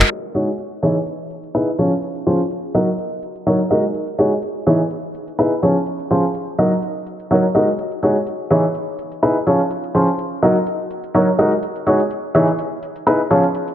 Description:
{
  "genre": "piano house",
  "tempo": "125 BPM",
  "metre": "4/4",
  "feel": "swing 54% on 16ths",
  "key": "unclear",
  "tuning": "A4 = 441 Hz",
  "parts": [
    { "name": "punchy analog drum machine", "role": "drums", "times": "0.0-13.7 s", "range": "handclaps, hi-hat", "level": "-15 LUFS", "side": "equal", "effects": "none" },
    { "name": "clear upright piano", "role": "riff", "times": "0.3-13.4 s", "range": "E3 to Eb5", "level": "-16 LUFS", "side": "equal", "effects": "dub echo" }
  ],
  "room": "moderate lush hall reverb, RT60 2.3 s",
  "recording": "low-pass filter",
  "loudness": "-16 LUFS",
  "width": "side -11 dB against mid",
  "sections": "0.1-13.7 A section",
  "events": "band accent 0.0; filter sweep 0.1-13.7",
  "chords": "0.1 Ab7sus4; 0.8 Emaj7; 1.8 Dbmaj7/F; 2.7 Gb6; 3.9 Ab7sus4; 4.7 Emaj7; 5.6 Dbmaj7/F; 6.6 Gb6; 7.8 Ab7sus4; 8.5 Emaj7; 9.5 Dbmaj7/F; 10.4 Gb6; 11.6 Ab7sus4; 12.3 Emaj7"
}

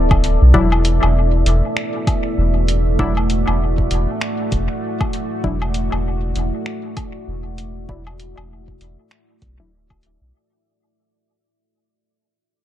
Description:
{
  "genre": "ambient dub",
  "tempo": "98 BPM",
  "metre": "4/4",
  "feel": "swing 59% on 16ths",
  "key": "unclear",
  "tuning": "A4 = 441 Hz",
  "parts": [
    { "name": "deep dark ambient pad", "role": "sustained chords", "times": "0.0-10.3 s", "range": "A3 to E5", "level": "-23 LUFS", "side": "right 1 dB", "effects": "chorus, built-in reverb, vintage 12-bit sampler grit" },
    { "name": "soft dub sub bass", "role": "bass", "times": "0.0-10.3 s", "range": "D1 to B1", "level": "-16 LUFS", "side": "equal", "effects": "tube saturation" },
    { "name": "electronic kick drum", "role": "drums", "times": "0.1-10.0 s", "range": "none", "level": "-20 LUFS", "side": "equal", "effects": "overdrive" },
    { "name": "lo-fi sampler-style drum kit", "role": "drums", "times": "0.1-10.2 s", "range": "finger snaps, hi-hat, woodblock", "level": "-26 LUFS", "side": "left 2 dB", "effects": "dub echo" },
    { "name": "filtered dub chord stab", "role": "stabs", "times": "0.5-9.7 s", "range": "F#3 to E4", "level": "-24 LUFS", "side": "left 2 dB", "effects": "chorus, dub echo" }
  ],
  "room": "little or no reverb",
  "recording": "none",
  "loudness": "-15 LUFS",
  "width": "side -12 dB against mid",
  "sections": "0.0-10.3 A section",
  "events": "fade-out 0.5-10.3",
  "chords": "0.0 E7(no3); 0.5 Dadd9/E"
}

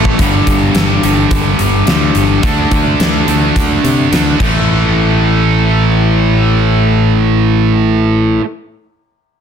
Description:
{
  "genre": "hard rock",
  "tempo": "107 BPM",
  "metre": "4/4",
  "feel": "straight",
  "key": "unclear",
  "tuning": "A4 = 441 Hz",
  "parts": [
    { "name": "overdriven electric guitar", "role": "riff", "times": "0.0-8.4 s", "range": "G2 to D4", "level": "-15 LUFS", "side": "left 8 dB", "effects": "none" },
    { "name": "tight distorted guitar", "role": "riff", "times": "0.0-8.5 s", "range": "G2 to D4", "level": "-15 LUFS", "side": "right 12 dB", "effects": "distortion" },
    { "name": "growling picked electric bass", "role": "bass", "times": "0.0-8.4 s", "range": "G1 to C3", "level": "-14 LUFS", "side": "equal", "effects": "overdrive" },
    { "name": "huge arena drum kit", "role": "drums", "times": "0.1-4.5 s", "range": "crash cymbal, hi-hat, kick drum, snare drum", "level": "-16 LUFS", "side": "equal", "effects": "none" }
  ],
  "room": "light reverb, small room ambience",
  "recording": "dense, heavily limited modern master",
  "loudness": "-9 LUFS",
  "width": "side -8 dB against mid",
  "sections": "0.2-4.7 A section; 4.7-6.9 B section",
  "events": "none",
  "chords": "0.2 G5; 2.4 D5; 4.4 A5"
}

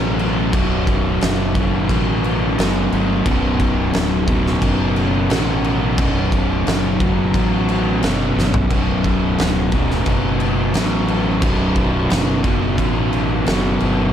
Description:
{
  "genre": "stoner and doom metal",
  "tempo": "88 BPM",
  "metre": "4/4",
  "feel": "straight",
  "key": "B minor",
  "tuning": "A4 = 441 Hz",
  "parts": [
    { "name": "fuzz guitar", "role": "riff", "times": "0.0-14.1 s", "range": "B1 to B2", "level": "-18 LUFS", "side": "equal", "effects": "distortion" },
    { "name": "fuzz fingered electric bass", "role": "bass", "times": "0.0-14.1 s", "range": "B0 to A1", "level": "-22 LUFS", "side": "equal", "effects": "overdrive" },
    { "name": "oversized low-tuned drum kit", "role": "drums", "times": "0.2-14.0 s", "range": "crash cymbal, kick drum, snare drum, toms", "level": "-21 LUFS", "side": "equal", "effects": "none" }
  ],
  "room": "light reverb",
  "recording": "none",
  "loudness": "-15 LUFS",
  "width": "side -9 dB against mid",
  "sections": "0.0-14.1 A section",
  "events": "drum fill 8.4-8.7",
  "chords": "0.0 B5"
}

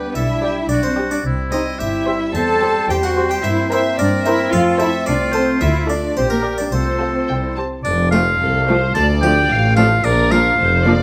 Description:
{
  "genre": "cinematic, playful, whimsical film cue",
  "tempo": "110 BPM",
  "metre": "2/4",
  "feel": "straight",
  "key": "F major from 3.4 s",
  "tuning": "A4 = 440 Hz",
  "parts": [
    { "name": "harpsichord", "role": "melody", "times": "0.0-11.0 s", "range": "D4 to A5", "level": "-30 LUFS", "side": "equal", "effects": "none" },
    { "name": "rich studio violin section", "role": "melody", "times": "0.0-11.0 s", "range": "A4 to A5", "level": "-30 LUFS", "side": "equal", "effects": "none" },
    { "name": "bright large flute ensemble", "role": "second line", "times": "0.0-7.6 s", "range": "Bb4 to A5", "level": "-29 LUFS", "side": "equal", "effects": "none" },
    { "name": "clear oboe", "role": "second line", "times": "0.0-11.0 s", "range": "E4 to A5", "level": "-23 LUFS", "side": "equal", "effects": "none" },
    { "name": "warm chamber violin section", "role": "second line", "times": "0.0-11.0 s", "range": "A3 to A5", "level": "-30 LUFS", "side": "equal", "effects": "none" },
    { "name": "warm chamber viola section", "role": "accompaniment", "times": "0.0-10.9 s", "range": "F3 to D5", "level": "-25 LUFS", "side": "equal", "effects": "none" },
    { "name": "warm French horn section", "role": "sustained chords", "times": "0.0-7.6 s", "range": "G3 to G4", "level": "-28 LUFS", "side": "equal", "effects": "none" },
    { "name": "clear chamber double bass section", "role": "bass", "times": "0.0-11.0 s", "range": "F1 to G2", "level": "-24 LUFS", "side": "equal", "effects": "none" },
    { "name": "dark chamber cello section", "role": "bass", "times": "0.0-11.0 s", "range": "C2 to A4", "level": "-24 LUFS", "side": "equal", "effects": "none" },
    { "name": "warm tuba", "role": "bass", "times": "7.9-11.0 s", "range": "F1 to D2", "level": "-24 LUFS", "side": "equal", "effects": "none" }
  ],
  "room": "moderate recital hall reverb, RT60 1.4 s",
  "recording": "none",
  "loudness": "-17 LUFS",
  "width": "mono",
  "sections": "0.0-7.8 A section; 7.8-11.0 B section",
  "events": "none",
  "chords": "0.2 G/B; 1.3 C; 2.3 C/E; 3.4 C7/G; 4.5 F; 5.6 Dm; 6.2 Gm/Bb; 6.7 F/C; 7.3 C; 7.8 F; 8.9 Dm; 10.0 Bb"
}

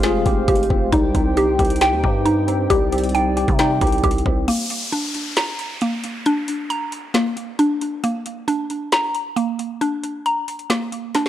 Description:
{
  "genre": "hip hop, trap",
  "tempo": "135 BPM",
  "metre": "4/4",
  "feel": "half-time",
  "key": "unclear",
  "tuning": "A4 = 439 Hz",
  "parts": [
    { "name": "tine electric piano", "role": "accompaniment", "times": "0.0-4.5 s", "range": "G3 to G5", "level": "-22 LUFS", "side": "equal", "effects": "overdrive, fast stereo tremolo" },
    { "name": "hollow soft pad", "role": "sustained chords", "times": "0.0-4.5 s", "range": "Ab3 to G5", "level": "-25 LUFS", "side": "equal", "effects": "chorus" },
    { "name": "mallet-like synth pluck", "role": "arpeggios", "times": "0.0-11.3 s", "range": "Bb3 to Bb5", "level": "-21 LUFS", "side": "equal", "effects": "chorus, phaser, analog delay" },
    { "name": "growling 808-style bass", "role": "bass", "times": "0.0-4.5 s", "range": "F1 to C3", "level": "-23 LUFS", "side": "equal", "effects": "none" },
    { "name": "trap drum kit", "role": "drums", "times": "0.0-11.3 s", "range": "crash cymbal, hi-hat, kick drum, snare drum", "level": "-22 LUFS", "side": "equal", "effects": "none" },
    { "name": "downlifter", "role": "sound effects", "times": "4.5-8.0 s", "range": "none", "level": "-29 LUFS", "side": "left 1 dB", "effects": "none" }
  ],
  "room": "little or no reverb",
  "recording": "dry, gritty hardware recording, transformer saturation",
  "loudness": "-18 LUFS",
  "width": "side -12 dB against mid",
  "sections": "0.0-4.5 A section; 4.5-11.3 B section",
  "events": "break 4.5-11.3",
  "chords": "0.0 Fmadd9; 0.9 Cm; 4.5 Bb"
}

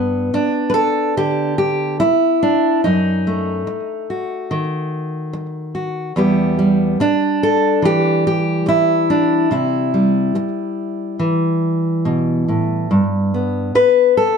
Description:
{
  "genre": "folk, solo fingerstyle acoustic guitar",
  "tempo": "71 BPM",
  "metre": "4/4",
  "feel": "straight",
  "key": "G major",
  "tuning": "A4 = 440 Hz",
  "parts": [
    { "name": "fingerpicked steel-string acoustic guitar", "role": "solo", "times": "0.0-14.4 s", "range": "E2 to B4", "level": "-15 LUFS", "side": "equal", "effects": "slapback echo" }
  ],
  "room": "moderate studio reverb, RT60 0.7 s",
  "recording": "dark, warm production",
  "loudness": "-15 LUFS",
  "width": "side -6 dB against mid",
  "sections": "0.0-14.4 A section",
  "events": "none",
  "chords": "0.0 G; 2.9 F#m6; 6.2 Em; 9.5 C; 12.9 G"
}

